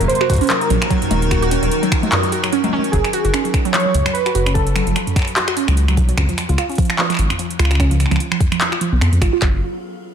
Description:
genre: IDM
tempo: 148 BPM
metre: 4/4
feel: swing 56% on 16ths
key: unclear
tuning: A4 = 440 Hz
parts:
  - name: warbly lo-fi synth keys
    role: melody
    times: 0.0-4.9 s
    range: G#4 to C#5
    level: -22 LUFS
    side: equal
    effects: chorus, digital delay, shimmer reverb
  - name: icy glass pad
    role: sustained chords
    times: 0.0-2.9, 9.6 s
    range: D#3 to A#4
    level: -25 LUFS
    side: right 1 dB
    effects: chorus, built-in reverb, shimmer reverb
  - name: warbly dusty pluck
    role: arpeggios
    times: 0.0-9.6 s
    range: E#2 to F#4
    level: -21 LUFS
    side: right 3 dB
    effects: chorus, phaser, digital delay, shimmer reverb
  - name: dark detuned saw bass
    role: bass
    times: 0.0-9.6 s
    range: D#1 to E#2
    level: -17 LUFS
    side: equal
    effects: none
  - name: booming analog drum machine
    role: drums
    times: 0.0-9.3 s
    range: congas, finger snaps, handclaps, hi-hat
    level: -21 LUFS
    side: equal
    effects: soft clipping on snare
  - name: glitchy drum kit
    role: drums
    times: 0.3-9.5 s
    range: handclaps, kick drum, snare drum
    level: -18 LUFS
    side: equal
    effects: none
room: light reverb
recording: dense, heavily limited modern master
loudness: -14 LUFS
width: side -8 dB against mid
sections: 0.0-2.9 A section; 2.9-9.4 B section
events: filter sweep on synth pluck 2.9-9.4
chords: 0.0 D#m; 2.9 F#madd9; 6.2 C#; 9.4 F#madd9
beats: 0.09 0.50 0.91 | 1.31 1.72 2.12 2.53 | 2.93 3.34 3.74 4.15 | 4.55 4.96 5.36 5.77 | 6.17 6.58 6.99 7.39 | 7.80 8.20 8.61 9.01 | 9.42

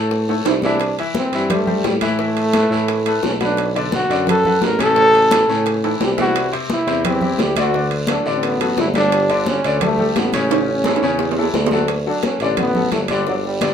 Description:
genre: latin, salsa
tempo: 173 BPM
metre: 4/4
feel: straight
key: D major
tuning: A4 = 440 Hz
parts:
  - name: clear trombone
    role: melody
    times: 0.0-13.7 s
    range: F#3 to Bb4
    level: -19 LUFS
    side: equal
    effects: none
  - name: bright upright piano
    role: accompaniment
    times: 0.0-13.7 s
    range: C3 to E5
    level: -23 LUFS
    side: left 4 dB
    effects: none
  - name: warm tuba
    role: bass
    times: 0.0-13.7 s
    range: G1 to A2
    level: -22 LUFS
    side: equal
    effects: none
  - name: bongos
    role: percussion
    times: 0.1-13.7 s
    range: none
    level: -29 LUFS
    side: left 6 dB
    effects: none
  - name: congas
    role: percussion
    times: 0.1-13.7 s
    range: none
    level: -25 LUFS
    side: equal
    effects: none
  - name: guiro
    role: percussion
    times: 0.1-13.7 s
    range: none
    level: -31 LUFS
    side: right 2 dB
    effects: none
  - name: timbales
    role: percussion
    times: 0.3-13.7 s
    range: none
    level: -25 LUFS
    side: right 6 dB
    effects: none
room: moderate small room reverb, RT60 0.6 s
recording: minimal, uncompressed stereo recording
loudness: -15 LUFS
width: side -8 dB against mid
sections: 0.8-11.9 A section; 11.9-13.7 B section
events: drum fill 0.3-0.8, 5.8-6.3, 10.5-11.9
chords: 0.0 A; 0.8 C; 2.2 Asus2; 3.6 Bmadd9; 5.0 A; 6.3 Cadd9; 7.7 D; 9.1 Gsus2; 10.5 A; 11.9 D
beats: 0.11 0.46 | 0.81 1.15 1.50 1.85 | 2.19 2.54 2.88 3.23 | 3.58 3.92 4.27 4.62 | 4.96 5.31 5.66 6.00 | 6.35 6.70 7.04 7.39 | 7.74 8.08 8.43 8.77 | 9.12 9.46 9.81 10.16 | 10.50 10.85 11.20 11.54 | 11.89 12.23 12.58 12.92 | 13.27 13.62

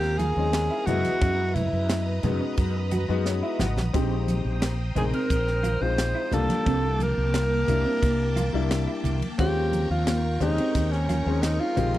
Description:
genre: electric jazz fusion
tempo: 88 BPM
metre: 4/4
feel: straight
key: unclear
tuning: A4 = 441 Hz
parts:
  - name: breathy alto saxophone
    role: melody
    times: 0.0-12.0 s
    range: Db4 to C5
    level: -27 LUFS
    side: equal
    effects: slapback echo
  - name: clear baby grand piano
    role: accompaniment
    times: 0.0-12.0 s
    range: G3 to Gb5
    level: -31 LUFS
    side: left 8 dB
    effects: none
  - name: string machine, violins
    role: sustained chords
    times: 0.0-12.0 s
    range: Bb3 to Eb6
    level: -35 LUFS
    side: equal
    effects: ensemble chorus
  - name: mellow fretless electric bass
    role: bass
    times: 0.0-11.9 s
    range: Ab1 to Gb2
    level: -26 LUFS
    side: equal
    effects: analog chorus
  - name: crisp fusion drum kit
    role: drums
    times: 0.0-12.0 s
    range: hi-hat, kick drum, ride cymbal, snare drum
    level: -29 LUFS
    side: equal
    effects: none
  - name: mellow electric guitar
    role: stabs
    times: 0.2-11.8 s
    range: Bb3 to Gb4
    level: -33 LUFS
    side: right 4 dB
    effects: analog chorus, slapback echo
  - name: congas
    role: percussion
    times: 0.2-12.0 s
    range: none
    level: -32 LUFS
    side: right 2 dB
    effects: none
room: little or no reverb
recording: dry, close 1970s-style studio recording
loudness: -22 LUFS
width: side -14 dB against mid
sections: 0.0-12.0 A section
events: grand piano fill 2.9-3.9; drum fill 3.3-3.9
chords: 0.0 Eb13sus4; 0.9 Gb13sus4; 3.9 Bb13sus4; 6.3 C13sus4; 9.4 Eb13sus4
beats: 0.53 | 1.21 1.89 2.57 3.25 | 3.94 4.62 5.30 5.98 | 6.66 7.34 8.02 8.71 | 9.39 10.07 10.75 11.43

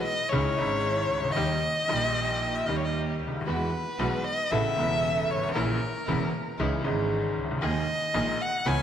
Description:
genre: tango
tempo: 116 BPM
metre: 4/4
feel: rubato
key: unclear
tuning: A4 = 440 Hz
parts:
  - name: warm violin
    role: second line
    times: 0.0-8.8 s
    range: A#4 to G#5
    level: -28 LUFS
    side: left 1 dB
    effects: none
  - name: bright upright piano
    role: accompaniment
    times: 0.0-8.8 s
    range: E1 to G#4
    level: -29 LUFS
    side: left 1 dB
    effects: none
  - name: warm chamber string section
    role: stabs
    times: 0.3-8.8 s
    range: G#3 to B4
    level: -36 LUFS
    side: right 3 dB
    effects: slapback echo
  - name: warm double bass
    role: bass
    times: 0.3-8.8 s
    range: E1 to E2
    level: -34 LUFS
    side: right 2 dB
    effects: none
room: wet concert hall reverb, RT60 2.0 s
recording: none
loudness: -25 LUFS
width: side -9 dB against mid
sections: 0.0-8.8 A section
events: violin solo 0.0-8.8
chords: 0.3 C#madd9; 1.4 D#; 3.5 Eadd9; 4.5 Aadd9; 5.6 A#dim; 6.6 C#madd9; 7.6 D#sus4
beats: 0.32 0.83 | 1.35 1.88 2.41 2.93 | 3.46 3.99 4.51 5.04 | 5.55 6.07 6.59 7.10 | 7.62 8.14 8.65

